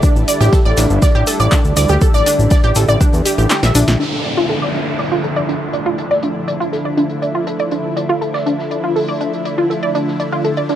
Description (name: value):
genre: melodic techno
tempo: 121 BPM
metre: 4/4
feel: straight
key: D minor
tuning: A4 = 439 Hz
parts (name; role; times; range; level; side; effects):
- lush unison pad; sustained chords; 0.0-10.8 s; D3 to E4; -23 LUFS; equal; chorus, phaser, sidechain pumping
- wide unison pluck; arpeggios; 0.0-10.7 s; D4 to E5; -17 LUFS; right 1 dB; analog chorus, sidechain pumping, analog delay
- bowed-like drone; drone; 0.0-10.8 s; D3 to D4; -27 LUFS; left 1 dB; built-in reverb, phaser, sidechain pumping
- electronic kick drum; drums; 0.0-3.1 s; none; -13 LUFS; equal; none
- open jazz drum kit; drums; 0.0-10.8 s; hi-hat, snare drum; -33 LUFS; left 3 dB; sidechain pumping on hats, high-pass filter on hats, low-pass filter on hats, high-pass filter on snare, low-pass filter on snare, high-pass filter on room, low-pass filter on room
- egg shaker; percussion; 0.0-4.0 s; none; -25 LUFS; equal; none
- fat analog bass; bass; 0.2-4.0 s; G1 to E2; -14 LUFS; equal; transformer saturation, sidechain pumping
- punchy analog drum machine; drums; 0.3-4.0 s; handclaps, hi-hat, snare drum; -20 LUFS; equal; overdrive, sidechain pumping on hats, low-pass filter on hats, low-pass filter on snare
- downlifter; sound effects; 4.0-8.0 s; none; -24 LUFS; equal; none
room: studio ambience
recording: dry, gritty hardware recording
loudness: -13 LUFS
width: side -11 dB against mid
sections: 0.0-4.0 A section; 4.0-10.8 B section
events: kick drops out 3.5-4.0; drum fill 3.5-4.0; band accent 3.9; filter sweep on synth pluck 4.0-10.8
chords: 0.0 A7sus4; 4.0 Dmadd9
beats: | 0.03 0.53 1.02 1.52 | 2.02 2.51 3.01 3.50 | 4.00 4.50 4.99 5.49 | 5.98 6.48 6.97 7.47 | 7.97 8.46 8.96 9.45 | 9.95 10.45